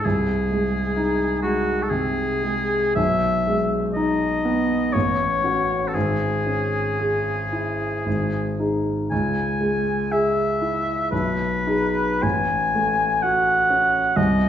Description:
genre	classical, romantic duo for oboe and grand piano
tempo	51-66 BPM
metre	3/4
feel	rubato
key	unclear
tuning	A4 = 438 Hz
part	warm oboe	melody	0.0-14.5 s	F#4 to G#5	-22 LUFS	left 1 dB	none
part	warm concert grand piano	accompaniment	0.0-14.5 s	G#1 to G#4	-22 LUFS	equal	none
room	wet recital hall reverb, RT60 1.2 s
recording	studio ambience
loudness	-19 LUFS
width	side -10 dB against mid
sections	0.0-14.5 A section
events	none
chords	0.0 G#/B#; 3.0 G#m/B; 4.9 F#m/A; 5.9 C#m/G#; 8.1 G#5; 9.1 C#m; 11.1 G#m/B; 12.2 F#m/A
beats	| 0.05 0.96 1.91 | 2.97 3.96 4.95 | 5.95 7.00 8.06 | 9.12 10.12 11.12 | 12.23 13.24 14.18

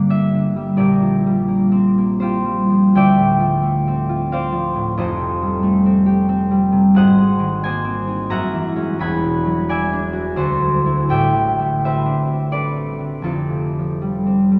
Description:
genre	classical, solo harp piece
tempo	76-92 BPM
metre	3/4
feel	rubato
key	unclear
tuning	A4 = 438 Hz
part	concert harp	solo	0.0-14.6 s	E1 to B5	-18 LUFS	equal	none
room	wet cathedral reverb, RT60 4.8 s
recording	recorded in a church or concert hall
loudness	-18 LUFS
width	mono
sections	0.0-14.6 A section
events	none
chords	0.0 Gm7; 0.8 Bb69; 2.9 Dm9; 5.0 F9; 7.0 Ab9; 8.3 F#9; 9.0 E9; 10.3 D9; 11.1 Am11; 13.2 Fadd9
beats	0.10 | 0.80 1.48 2.19 | 2.94 3.63 4.30 | 4.98 5.63 6.29 | 6.95 7.63 8.31 | 8.99 9.67 10.35 | 11.08 11.79 12.50 | 13.24 14.03

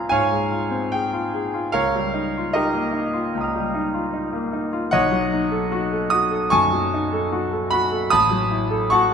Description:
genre	classical, impressionist solo piano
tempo	76 BPM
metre	4/4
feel	rubato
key	unclear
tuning	A4 = 438 Hz
part	clear concert grand piano	solo	0.0-9.1 s	A1 to F6	-19 LUFS	equal	none
room	wet recital hall reverb, RT60 1.3 s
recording	none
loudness	-19 LUFS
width	side -7 dB against mid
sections	0.0-9.1 A section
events	none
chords	0.0 Dbmaj7; 1.7 Eb9/Db; 4.9 B13; 8.1 A69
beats	0.13 0.94 | 1.74 2.53 3.32 4.11 | 4.90 5.69 6.49 7.31 | 8.10 8.90

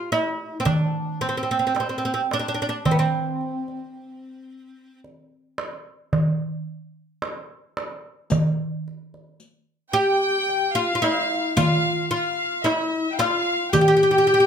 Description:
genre	Turkish makam ensemble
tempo	110 BPM (eighths)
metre	10/8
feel	straight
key	G makam hicaz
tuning	A4 = 439 Hz
part	oud	melody	0.0-14.5 s	B3 to G4	-22 LUFS	equal	plate reverb
part	darbuka	percussion	0.1-14.0 s	none	-24 LUFS	right 1 dB	none
part	riq	percussion	8.3-14.4 s	none	-32 LUFS	left 5 dB	none
part	warm chamber violin section	second line	9.9-14.5 s	E5-40c to G5	-24 LUFS	left 2 dB	none
room	wet studio reverb, RT60 0.6 s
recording	none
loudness	-20 LUFS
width	side -7 dB against mid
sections	0.0-14.5 A section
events	none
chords	none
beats	0.12 0.66 1.21 1.76 2.30 | 2.85 3.40 3.94 4.49 5.03 5.58 6.12 6.67 7.21 7.76 | 8.30 8.85 9.39 9.94 10.48 11.03 11.57 12.12 12.66 13.21 | 13.75 14.30

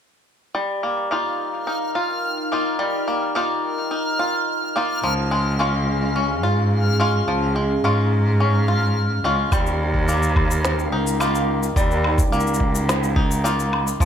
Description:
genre	folktronica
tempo	107 BPM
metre	4/4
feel	straight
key	Eb mixolydian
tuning	A4 = 441 Hz
part	warbly tape-like pad	sustained chords	1.2-14.1 s	Db4 to Bb5	-28 LUFS	equal	chorus, built-in reverb
part	bluegrass banjo	arpeggios	0.5-14.1 s	F3 to F4	-23 LUFS	left 1 dB	low-pass filter, digital delay
part	backwards swelling texture	texture	1.6-9.5 s	F6	-30 LUFS	right 1 dB	built-in reverb
part	rich cello	bass	5.0-14.1 s	Db2 to Ab2	-21 LUFS	equal	tube saturation
part	electronic kick drum	drums	9.5-14.1 s	none	-20 LUFS	equal	none
part	electronic woodblock, shaker and snare drum	drums	9.5-14.1 s	none	-27 LUFS	left 1 dB	overdrive, low-pass filter on perc, low-pass filter on snare, low-pass filter on room
room	light reverb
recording	none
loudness	-18 LUFS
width	side -8 dB against mid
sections	0.5-9.5 A section; 9.5-14.1 B section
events	none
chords	0.5 Ebadd9; 5.0 Db; 9.5 Ebadd9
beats	| 0.55 1.11 1.67 2.23 | 2.79 3.35 3.91 4.47 | 5.03 5.59 6.16 6.72 | 7.28 7.84 8.40 8.96 | 9.52 10.08 10.64 11.20 | 11.76 12.32 12.88 13.45 | 14.01

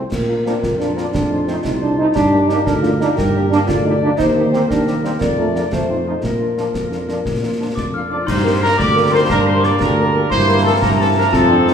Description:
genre	military-style march for wind band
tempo	118 BPM (dotted quarters)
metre	6/8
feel	straight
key	unclear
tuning	A4 = 440 Hz
part	mellow tuba	bass	0.0-11.7 s	C2 to Bb2	-19 LUFS	right 2 dB	none
part	warm euphonium	second line	0.1-11.7 s	G3 to G4	-20 LUFS	right 1 dB	none
part	concert snare drum, clash cymbals and concert bass drum	drums	0.1-11.7 s	none	-25 LUFS	left 1 dB	none
part	dark trumpet section	melody	0.3-11.7 s	F4 to F5	-23 LUFS	right 1 dB	none
part	mellow French horn section	accompaniment	0.3-11.7 s	E3 to Bb4	-25 LUFS	left 4 dB	none
part	clear trombone section	sustained chords	0.4-11.7 s	E3 to Eb4	-26 LUFS	right 1 dB	none
part	warm woodwind section	second line	0.6-11.7 s	C4 to D5	-24 LUFS	left 3 dB	none
part	glockenspiel with soft plastic mallets	second line	7.8-11.7 s	A5 to F6	-22 LUFS	left 4 dB	none
part	wooden piccolo	second line	7.8-11.7 s	A5 to F6	-25 LUFS	left 2 dB	none
room	wet recital hall reverb, RT60 1.6 s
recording	recorded in a church or concert hall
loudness	-14 LUFS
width	side -7 dB against mid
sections	0.0-8.3 A section; 8.3-11.7 B section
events	none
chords	0.1 Bb; 1.1 F7; 2.2 Gm; 4.2 Cm7/Eb; 5.2 Bb/F; 5.7 F5; 6.2 Bb; 8.3 Gm; 10.3 C7/G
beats	| 0.12 0.63 | 1.14 1.65 | 2.16 2.67 | 3.17 3.69 | 4.20 4.71 | 5.21 5.72 | 6.24 6.74 | 7.25 7.76 | 8.27 8.78 | 9.29 9.80 | 10.31 10.82 | 11.33

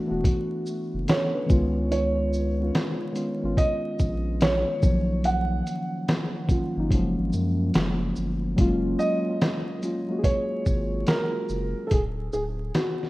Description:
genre	lo-fi hip hop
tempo	72 BPM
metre	4/4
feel	swing 65% on 16ths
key	F# major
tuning	A4 = 440 Hz
part	felt-muted upright piano	melody	0.0-13.1 s	F#4 to F#5	-29 LUFS	right 2 dB	none
part	muted felt-like synth keys	accompaniment	0.0-11.9 s	D#3 to B4	-27 LUFS	left 1 dB	chorus
part	saturated sub bass	bass	0.1-12.7 s	D1 to F#2	-28 LUFS	equal	none
part	lo-fi sampler-style drum kit	drums	0.2-13.1 s	hi-hat, kick drum, shaker, snare drum	-24 LUFS	equal	none
room	moderate lush hall reverb, RT60 2.3 s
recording	rough home demo mix, vinyl crackle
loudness	-22 LUFS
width	side -18 dB against mid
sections	0.0-8.6 A section; 8.6-13.1 B section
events	none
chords	0.0 D69; 1.5 C#9; 4.8 Bmaj9#11; 6.9 F#maj9; 11.9 D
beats	0.25 1.08 | 1.92 2.75 3.58 4.42 | 5.25 6.08 6.92 7.75 | 8.58 9.42 10.25 11.08 | 11.92 12.75

